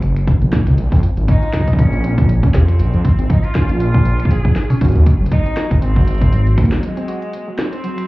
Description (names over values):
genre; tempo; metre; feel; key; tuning
IDM; 119 BPM; 4/4; swing 56% on 16ths; unclear; A4 = 440 Hz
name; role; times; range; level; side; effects
dark detuned saw bass; bass; 0.0-6.8 s; Gb1 to F2; -14 LUFS; equal; none
industrial drum kit; drums; 0.0-8.1 s; finger snaps, hi-hat, snare drum, toms; -22 LUFS; equal; tape echo
electronic kick drum; drums; 0.3-6.7 s; none; -15 LUFS; equal; none
warbly dusty pluck; arpeggios; 0.9-7.9 s; F3 to Gb4; -24 LUFS; right 1 dB; analog chorus, tape echo
warm cello; melody; 1.3-8.1 s; Ab3 to Ab4; -25 LUFS; right 1 dB; ping-pong delay
room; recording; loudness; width
digital ambience; heard muffled through a wall, club reverb, EQ; -12 LUFS; side -19 dB against mid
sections
0.0-8.1 A section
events
break 6.8-8.1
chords
0.0 Gb; 0.8 Bb5; 4.8 Ab7